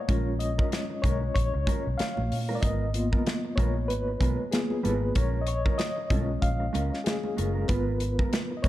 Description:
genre	lush 1970s-style soul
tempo	95 BPM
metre	4/4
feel	swing 58% on 16ths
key	unclear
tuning	A4 = 440 Hz
part	mellow reed electric piano	accompaniment	0.0-8.7 s	G#3 to F#5	-30 LUFS	left 2 dB	fast tremolo
part	mellow electric guitar	riff	0.1-8.7 s	G#3 to A#4	-36 LUFS	right 3 dB	none
part	vintage muted fingered electric bass	bass	0.1-8.7 s	F#1 to A#2	-29 LUFS	equal	none
part	modern studio drum kit	drums	0.1-8.7 s	hi-hat, kick drum, snare drum	-29 LUFS	equal	none
part	congas	percussion	0.1-8.7 s	none	-39 LUFS	right 4 dB	none
room	light reverb, small room ambience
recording	dark, warm production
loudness	-25 LUFS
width	side -14 dB against mid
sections	0.0-8.7 A section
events	reed electric piano solo 0.0-8.7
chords	0.1 A#m7; 2.6 G#m69; 5.2 A#m7; 7.7 G#m69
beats	| 0.09 0.73 1.36 1.99 | 2.63 3.26 3.90 4.53 | 5.16 5.80 6.43 7.06 | 7.70 8.33

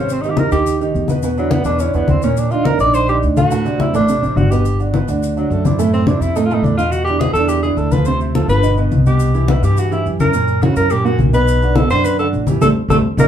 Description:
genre	Afro-Cuban jazz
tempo	211 BPM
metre	4/4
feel	straight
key	G major from 4.6 s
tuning	A4 = 440 Hz
part	warm tenor saxophone	melody	0.0-13.3 s	Gb3 to D5	-18 LUFS	equal	none
part	clear baby grand piano	accompaniment	0.0-13.3 s	A2 to C5	-18 LUFS	right 4 dB	none
part	upright bass	bass	0.0-13.3 s	G1 to G2	-18 LUFS	left 1 dB	none
part	congas	percussion	0.1-13.2 s	none	-20 LUFS	left 3 dB	none
part	maracas	percussion	0.1-13.3 s	none	-38 LUFS	left 6 dB	none
room	wet studio reverb, RT60 0.5 s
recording	heard from further back in the room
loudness	-13 LUFS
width	side -9 dB against mid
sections	0.0-4.6 A section; 4.6-13.3 A section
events	tenor saxophone solo 0.0-13.3; band accent 12.6-13.3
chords	0.1 Abmaj7; 1.2 E5; 2.4 Eb5; 3.5 D6; 4.6 Gmaj7; 5.8 F#m7b5; 6.4 F; 6.9 E5; 8.1 Dm7; 8.6 G; 9.2 Cmaj7; 10.3 F#7; 11.5 Bm7; 12.6 Am7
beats	| 0.10 0.38 0.67 0.95 | 1.23 1.52 1.80 2.09 | 2.37 2.66 2.94 3.23 | 3.51 3.79 4.08 4.36 | 4.65 4.93 5.22 5.50 | 5.79 6.07 6.36 6.64 | 6.92 7.21 7.49 7.78 | 8.06 8.35 8.63 8.92 | 9.20 9.48 9.77 10.05 | 10.34 10.62 10.91 11.19 | 11.48 11.76 12.04 12.33 | 12.62 12.90 13.19

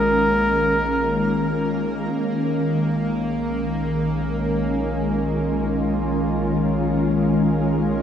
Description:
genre	ambient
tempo	free time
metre	none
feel	none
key	Bb minor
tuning	A4 = 440 Hz
part	warm flugelhorn	melody	0.0-1.7 s	Bb4	-22 LUFS	equal	shimmer reverb, tape echo
part	ethereal airy pad	sustained chords	0.0-8.0 s	Eb3 to F4	-21 LUFS	equal	ensemble chorus, built-in reverb, shimmer reverb
part	warm sub bass	bass	0.0-8.0 s	Bb1	-32 LUFS	equal	none
part	bowed-like drone	drone	0.2-8.0 s	Bb3 to Bb4	-28 LUFS	equal	built-in reverb
room	wet lush hall reverb, RT60 2.8 s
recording	none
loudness	-19 LUFS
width	side -8 dB against mid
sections	0.0-8.0 A section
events	fade-out on sub bass 0.0-8.0; filter sweep on ambient pad 0.0-8.0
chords	0.0 Bbm7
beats	free time

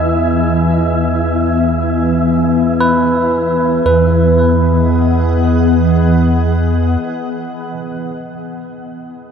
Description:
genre	ambient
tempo	free time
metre	none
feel	none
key	E major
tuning	A4 = 443 Hz
part	glassy FM pad	sustained chords	0.0-8.4 s	E3 to G#5	-15 LUFS	left 1 dB	ensemble chorus, built-in reverb
part	bell-like tine electric piano	arpeggios	0.0-9.3 s	B4 to D#5	-19 LUFS	right 1 dB	phaser, diffuse ambient delay
part	warm sub bass	bass	0.0-7.0 s	E2	-16 LUFS	right 1 dB	none
part	wind-like tuned noise texture	texture	0.0-3.9 s	E4 to E5	-22 LUFS	right 2 dB	built-in reverb
room	wet huge ambient reverb, RT60 7.9 s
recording	none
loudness	-11 LUFS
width	side -7 dB against mid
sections	0.0-3.9 A section; 3.9-8.1 B section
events	none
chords	0.0 Emaj7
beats	free time

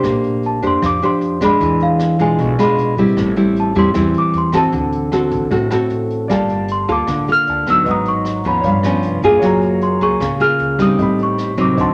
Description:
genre	bossa nova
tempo	154 BPM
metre	4/4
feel	straight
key	unclear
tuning	A4 = 439 Hz
part	nylon-string guitar	accompaniment	0.0-11.9 s	G2 to C5	-18 LUFS	equal	none
part	upright bass	bass	0.0-11.9 s	F1 to F2	-29 LUFS	equal	none
part	jazz brush drum kit	drums	0.0-11.9 s	hi-hat, kick drum, rim click	-32 LUFS	equal	none
part	celesta	melody	0.5-11.9 s	F5 to F6	-21 LUFS	equal	none
part	warm grand piano	accompaniment	6.3-11.9 s	C4 to B5	-27 LUFS	equal	none
room	moderate large studio reverb, RT60 1.0 s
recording	none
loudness	-16 LUFS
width	mono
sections	0.0-11.9 A section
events	none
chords	0.0 Bb69; 1.6 E7b9; 3.2 Am7; 4.7 D7; 6.3 Gm9; 7.9 Abm7; 8.6 G7#11; 9.4 Gbmaj9; 11.0 Am7b5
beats	| 0.05 0.44 0.83 1.22 | 1.61 2.00 2.39 2.78 | 3.17 3.56 3.95 4.34 | 4.73 5.12 5.51 5.91 | 6.30 6.69 7.08 7.47 | 7.86 8.25 8.64 9.03 | 9.42 9.82 10.21 10.60 | 10.99 11.38 11.77

